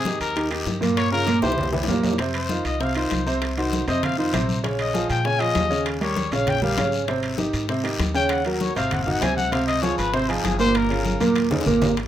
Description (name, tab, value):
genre	Afro-Cuban jazz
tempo	196 BPM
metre	4/4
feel	straight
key	F minor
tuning	A4 = 440 Hz
part	warm trumpet	melody	0.0-11.4 s	Eb4 to Ab5	-26 LUFS	left 4 dB	plate reverb
part	upright bass	bass	0.0-12.1 s	G1 to Bb2	-29 LUFS	equal	none
part	warm upright piano	accompaniment	0.1-11.9 s	Bb2 to Db5	-23 LUFS	right 2 dB	plate reverb
part	bongos	percussion	0.1-12.1 s	none	-34 LUFS	left 10 dB	none
part	congas	percussion	0.1-12.1 s	none	-29 LUFS	left 2 dB	none
part	guiro	percussion	0.1-12.1 s	none	-34 LUFS	left 5 dB	none
part	timbales	percussion	0.2-12.1 s	none	-33 LUFS	right 5 dB	none
room	moderate studio reverb, RT60 0.6 s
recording	rough home demo mix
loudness	-20 LUFS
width	side -11 dB against mid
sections	0.0-2.2 A section; 2.2-12.0 A section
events	trumpet solo 0.0-12.0; drum fill 1.4-2.2, 11.1-12.0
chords	0.0 Abmaj7sus2; 1.0 Gm7b5; 1.6 C7; 2.2 F5; 3.4 Cdim; 4.0 F5; 4.6 Bbm7; 5.9 Eb7; 7.1 Abmaj7; 8.3 Ebm7; 8.9 Ab7; 9.5 Dbmaj7; 10.7 Gm7b5; 11.4 Eb5